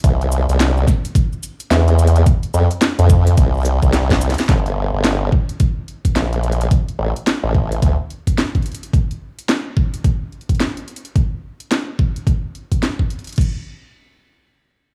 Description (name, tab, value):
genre	glitch hop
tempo	108 BPM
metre	4/4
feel	swing 61% on 16ths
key	G dorian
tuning	A4 = 441 Hz
part	formant-sweep wobble bass	bass	0.0-8.0 s	G1 to F2	-17 LUFS	equal	chorus
part	drum and bass drum kit	drums	0.0-13.5 s	crash cymbal, hi-hat, shaker, snare drum	-23 LUFS	equal	overdrive
part	electronic kick drum	drums	0.0-13.5 s	none	-18 LUFS	equal	overdrive
room	little or no reverb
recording	small room reverb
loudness	-17 LUFS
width	mono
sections	0.0-4.5 A section; 4.5-13.4 B section; 13.4-14.9 C section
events	drop 0.0-4.5; drum fill 3.9-4.5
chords	none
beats	| 0.04 0.60 1.15 1.71 | 2.26 2.82 3.38 3.93 | 4.49 5.04 5.60 6.15 | 6.71 7.26 7.82 8.38 | 8.93 9.49 10.04 10.60 | 11.15 11.71 12.26 12.82 | 13.38